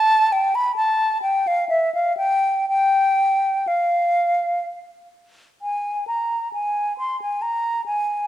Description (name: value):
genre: classical, baroque-style fantasia for unaccompanied flute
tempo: 60-69 BPM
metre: 3/4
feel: rubato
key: unclear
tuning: A4 = 439 Hz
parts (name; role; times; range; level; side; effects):
- mellow silver concert flute; solo; 0.0-8.3 s; E5 to C6; -18 LUFS; equal; none
room: moderate recital hall reverb, RT60 1.4 s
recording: dark, warm production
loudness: -18 LUFS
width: side -12 dB against mid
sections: 0.0-5.6 A section; 5.6-8.3 A section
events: none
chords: none